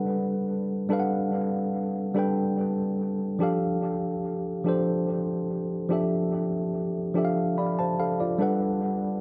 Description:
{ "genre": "R&B", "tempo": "48 BPM (dotted quarters)", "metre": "6/8", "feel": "straight", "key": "unclear", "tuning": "A4 = 440 Hz", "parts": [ { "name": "tine electric piano", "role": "solo", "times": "0.0-9.2 s", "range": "F3 to B5", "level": "-27 LUFS", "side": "equal", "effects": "overdrive, analog delay" } ], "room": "moderate spring reverb, RT60 1.4 s, digital ambience", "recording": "echo-heavy mix", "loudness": "-27 LUFS", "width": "mono", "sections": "0.0-9.2 A section", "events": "none", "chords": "0.0 Gmaj7; 3.4 F6; 8.4 Gmaj7" }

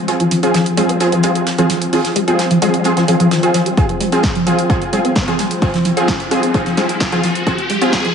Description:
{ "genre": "driving peak-time techno", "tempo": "130 BPM", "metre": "4/4", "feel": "straight", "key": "F minor", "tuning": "A4 = 441 Hz", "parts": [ { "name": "analog drone", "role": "drone", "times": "0.0-8.1 s", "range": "F3 to C4", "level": "-22 LUFS", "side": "left 3 dB", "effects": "chorus, sidechain pumping" }, { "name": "rave stab", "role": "stabs", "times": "0.1-7.9 s", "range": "C4 to Ab4", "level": "-17 LUFS", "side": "right 1 dB", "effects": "chorus, built-in reverb, sidechain pumping, tape echo" }, { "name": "loose indie drum kit", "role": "drums", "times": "0.1-8.0 s", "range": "hi-hat, snare drum", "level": "-29 LUFS", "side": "right 2 dB", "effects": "none" }, { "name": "techno drum kit", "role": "drums", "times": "0.1-8.1 s", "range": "hi-hat, snare drum", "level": "-23 LUFS", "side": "right 1 dB", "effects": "sidechain pumping on hats, analog delay" }, { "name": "resonant blip pluck", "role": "riff", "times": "0.2-8.1 s", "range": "E3 to C4", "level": "-18 LUFS", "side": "equal", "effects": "phaser, wide subtle chorus, sidechain pumping, tape echo" }, { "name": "electronic kick drum", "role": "drums", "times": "3.8-8.0 s", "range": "none", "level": "-18 LUFS", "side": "equal", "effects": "none" }, { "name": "riser", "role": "sound effects", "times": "5.5-8.1 s", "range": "none", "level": "-24 LUFS", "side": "left 2 dB", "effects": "none" } ], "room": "wet echo chamber reverb, RT60 1.4 s, digital ambience", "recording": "echo-heavy mix, high-pass filter, nothing above 10.7 kHz", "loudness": "-13 LUFS", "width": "side -7 dB against mid", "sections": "0.0-8.1 A section", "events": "build-up 0.0-8.1; filter sweep on synth arpeggio sound 0.0-8.1; riser 5.5-8.1", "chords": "0.0 Fm" }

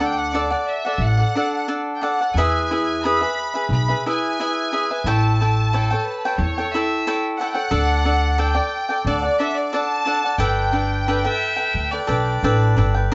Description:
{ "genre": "mexican folk, mariachi", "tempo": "89 BPM", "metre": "4/4", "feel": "straight", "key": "G major", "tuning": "A4 = 438 Hz", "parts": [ { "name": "clear chamber violin section", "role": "melody", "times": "0.0-13.1 s", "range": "D5 to B5", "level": "-27 LUFS", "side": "equal", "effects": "none" }, { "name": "cavaquinho", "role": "accompaniment", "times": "0.0-13.1 s", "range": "D4 to G5", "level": "-24 LUFS", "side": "equal", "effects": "none" }, { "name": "upright bass", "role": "bass", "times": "0.0-13.1 s", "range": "G1 to E2", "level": "-23 LUFS", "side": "equal", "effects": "none" }, { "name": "clear fiddle", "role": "second line", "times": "5.7-13.1 s", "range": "A4 to E5", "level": "-28 LUFS", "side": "equal", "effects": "none" } ], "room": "moderate studio ambience, RT60 0.5 s", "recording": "band playing live in one room, nothing above 7.9 kHz", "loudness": "-21 LUFS", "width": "mono", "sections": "0.0-13.1 A section", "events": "none", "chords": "0.0 D; 2.4 E; 5.0 A7; 7.7 Dsus4; 9.0 D; 10.4 Gadd9" }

